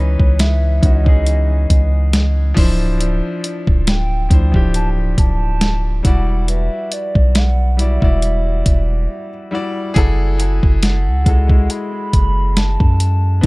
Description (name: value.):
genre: contemporary R&B.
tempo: 69 BPM.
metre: 4/4.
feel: swing 54% on 16ths.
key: unclear.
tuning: A4 = 439 Hz.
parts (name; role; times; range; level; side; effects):
hollow clarinet-like synth lead; melody; 0.0-13.5 s; C#5 to B5; -26 LUFS; right 1 dB; chorus, analog delay.
clear baby grand piano; accompaniment; 0.0-13.5 s; E3 to D5; -23 LUFS; left 2 dB; analog delay.
long sustained 808-style bass; bass; 0.0-13.5 s; D1 to F#2; -15 LUFS; equal; none.
dusty soul sampler-style drum kit; drums; 0.2-13.5 s; hi-hat, kick drum, snare drum; -14 LUFS; equal; none.
large celesta; texture; 6.5-8.3 s; B4; -38 LUFS; left 3 dB; none.
room: little or no reverb.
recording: echo-heavy mix.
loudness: -13 LUFS.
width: side -23 dB against mid.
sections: 0.0-13.5 A section.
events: break 9.1-10.0.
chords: 0.0 C#m9; 2.6 Dm9; 6.0 Em9; 10.0 F#m9.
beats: 0.39 1.26 2.13 | 3.00 3.87 4.74 5.61 | 6.48 7.35 8.22 9.09 | 9.96 10.83 11.70 12.57 | 13.44.